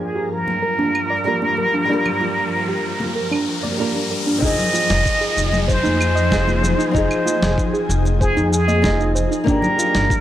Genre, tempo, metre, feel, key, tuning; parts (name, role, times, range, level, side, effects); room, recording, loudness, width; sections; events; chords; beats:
sunset chillout; 95 BPM; 4/4; straight; F dorian; A4 = 439 Hz
trumpet with plunger mute; melody; 0.0-10.2 s; Ab4 to Eb5; -21 LUFS; equal; tape echo
flamenco guitar; accompaniment; 0.0-10.2 s; F3 to Eb5; -26 LUFS; moving between left 4 dB and right 5 dB; auto-pan
shimmering ambient pad; sustained chords; 0.0-10.2 s; G2 to Bb4; -26 LUFS; left 1 dB; chorus, built-in reverb
riser and downlifter; sound effects; 0.6-9.5 s; -29 LUFS; equal
soft round pluck; arpeggios; 0.2-9.9 s; D4 to Eb5; -24 LUFS; right 3 dB; chorus, analog delay
congas; percussion; 0.5-9.9 s; -28 LUFS; left 2 dB
electronic claves, shaker and snare drum; drums; 0.9-10.2 s; -25 LUFS; equal
upright bass; bass; 4.4-10.1 s; F1 to F2; -21 LUFS; equal; tube saturation
electronic kick drum; drums; 4.4-10.2 s; -22 LUFS; equal
studio ambience; dry, gritty hardware recording; -16 LUFS; side -12 dB against mid
0.0-4.4 A section; 4.4-10.2 B section
riser 0.6-4.4
0.0 Gm7; 4.4 Fm7; 9.5 Gm7
0.00 0.64 1.27 | 1.90 2.53 3.16 3.79 | 4.42 5.06 5.69 6.32 | 6.95 7.58 8.21 8.85 | 9.48 10.11